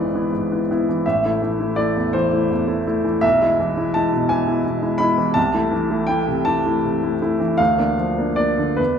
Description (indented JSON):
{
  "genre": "classical, romantic character piece for solo piano",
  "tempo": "55 BPM (dotted quarters)",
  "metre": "6/8",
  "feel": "uneven beats, rubato",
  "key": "A minor",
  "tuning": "A4 = 443 Hz",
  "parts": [
    { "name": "clear baby grand piano", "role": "solo", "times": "0.0-9.0 s", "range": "G#1 to B5", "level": "-17 LUFS", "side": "equal", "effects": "none" }
  ],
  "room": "wet recital hall reverb, RT60 1.7 s",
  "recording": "minimal, uncompressed stereo recording",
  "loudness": "-17 LUFS",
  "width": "side -7 dB against mid",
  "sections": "0.0-9.0 A section",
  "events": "none",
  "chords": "0.0 E/G#; 1.0 Am; 3.2 E/B; 5.4 Am/C; 7.6 Bb/D"
}